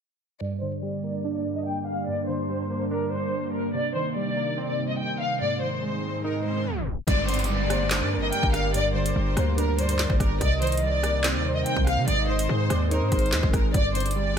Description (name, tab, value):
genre	hip hop, drill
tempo	144 BPM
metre	4/4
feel	half-time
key	G phrygian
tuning	A4 = 443 Hz
part	dark studio violin section	melody	0.4-14.4 s	Bb4 to G5	-28 LUFS	left 1 dB	low-pass filter
part	warbly lo-fi synth keys	accompaniment	0.4-14.4 s	G2 to Eb4	-30 LUFS	right 1 dB	chorus, low-pass filter
part	ethereal airy pad	sustained chords	0.8-14.4 s	G2 to D5	-32 LUFS	right 1 dB	ensemble chorus, built-in reverb, low-pass filter
part	riser and downlifter	sound effects	6.2-10.4 s	none	-36 LUFS	equal	none
part	gliding portamento lead	second line	7.1-14.3 s	Bb4 to Eb5	-33 LUFS	right 5 dB	chorus, ping-pong delay
part	hard-hitting 808-style bass	bass	7.1-14.4 s	G1 to C3	-26 LUFS	equal	none
part	drill drum kit	drums	7.1-14.2 s	handclaps, hi-hat, kick drum, rim click, snare drum	-27 LUFS	equal	none
room	light reverb, digital ambience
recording	tape stop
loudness	-23 LUFS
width	side -8 dB against mid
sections	0.4-7.1 A section; 7.1-14.4 B section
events	filter sweep 0.4-7.1; riser 6.2-7.1; tape stop 6.7-7.1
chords	0.4 Gm; 3.7 Cm7; 5.4 Ab; 7.1 Gm; 10.4 Cm7; 12.1 Ab; 13.7 Gm